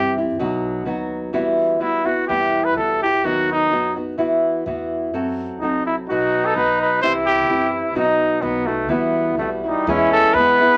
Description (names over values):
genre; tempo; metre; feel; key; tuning
mexican folk, mariachi; 127 BPM; 2/4; rubato; E harmonic minor; A4 = 440 Hz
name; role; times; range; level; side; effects
clear trumpet; melody; 0.0-10.8 s; D#4 to C5; -20 LUFS; equal; none
flamenco guitar; accompaniment; 0.0-10.8 s; B2 to A4; -24 LUFS; equal; none
upright bass; bass; 0.0-10.6 s; B1 to G2; -39 LUFS; equal; none
clear trumpet; second line; 6.1-10.8 s; G3 to E4; -24 LUFS; equal; none
room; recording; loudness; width
moderate small room reverb, RT60 0.5 s; none; -19 LUFS; mono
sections
0.0-2.3 A section; 2.3-9.9 A section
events
none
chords
0.4 B; 1.3 Emadd9; 3.3 B/D#; 4.2 Esus2; 5.1 F#dim; 6.1 B; 7.0 C; 8.0 B; 8.9 Emadd9; 9.9 E